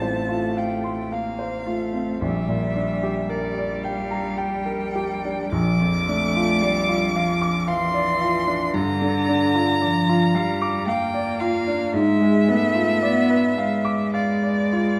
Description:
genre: classical, slow romantic movement for piano trio.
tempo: 56 BPM.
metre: 3/4.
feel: rubato.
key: unclear.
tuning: A4 = 437 Hz.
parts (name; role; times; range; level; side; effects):
rich violin; melody; 0.0-15.0 s; D5 to D6; -28 LUFS; equal; none.
rich cello; second line; 0.0-15.0 s; D3 to B3; -27 LUFS; equal; none.
warm concert grand piano; accompaniment; 0.0-15.0 s; A1 to D6; -25 LUFS; equal; none.
room: wet recital hall reverb, RT60 1.6 s.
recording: none.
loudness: -22 LUFS.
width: mono.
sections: 0.0-15.0 A section.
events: none.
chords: 0.0 F/A; 2.2 Gm/Bb; 5.5 Bb; 8.8 Gm7; 11.9 G#dim7.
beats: 0.04 1.14 | 2.22 3.30 4.38 | 5.53 6.62 7.69 | 8.75 9.82 10.88 | 11.94 13.03 14.15.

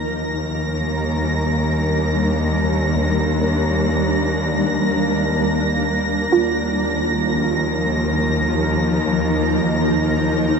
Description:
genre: ambient.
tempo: free time.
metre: none.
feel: none.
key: unclear.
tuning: A4 = 440 Hz.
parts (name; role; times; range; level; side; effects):
shimmering ambient pad; sustained chords; 0.0-10.6 s; F3 to Bb4; -20 LUFS; equal; chorus, built-in reverb.
warm studio cello section; bass; 0.0-10.6 s; Eb2; -21 LUFS; equal; none.
warm studio violin section; texture; 0.0-10.6 s; Bb6; -25 LUFS; right 1 dB; none.
soft round pluck; arpeggios; 6.3-10.5 s; F4; -23 LUFS; right 6 dB; analog chorus, diffuse ambient delay.
room: wet huge ambient reverb, RT60 8.0 s.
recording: none.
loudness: -17 LUFS.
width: side -5 dB against mid.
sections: 0.0-10.6 A section.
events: fade-in on ambient pad 0.0-10.6; fade-in on violin section 0.0-10.6.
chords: 0.0 Gm/Eb; 6.3 Ebsus2.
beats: free time.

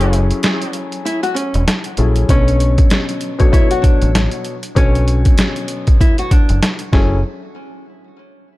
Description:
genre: hip hop, boom-bap hip-hop.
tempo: 97 BPM.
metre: 4/4.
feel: swing 59% on 16ths.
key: unclear.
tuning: A4 = 436 Hz.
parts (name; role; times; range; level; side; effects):
nylon-string guitar; melody; 0.0-7.2 s; C#4 to F#4; -23 LUFS; equal; high-pass filter, low-pass filter, digital delay.
dark concert grand piano; accompaniment; 0.0-7.2 s; B2 to C#5; -22 LUFS; left 4 dB; cassette tape, high-pass filter, low-pass filter.
deep dub fingered electric bass; bass; 0.0-7.2 s; E1 to B1; -15 LUFS; equal; none.
boom bap sampler-style drum kit; drums; 0.0-7.1 s; hi-hat, kick drum, snare drum; -14 LUFS; equal; none.
room: small room reverb.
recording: dark, warm production.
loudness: -12 LUFS.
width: side -18 dB against mid.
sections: 0.0-2.3 A section; 2.3-7.2 B section; 7.2-8.6 C section.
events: break 0.0-2.3.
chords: 0.0 F#m9; 2.3 Bm9; 6.9 F#m9; 7.2 N.C..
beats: 0.43 1.05 1.67 | 2.29 2.91 3.53 4.14 | 4.76 5.38 6.00 6.62.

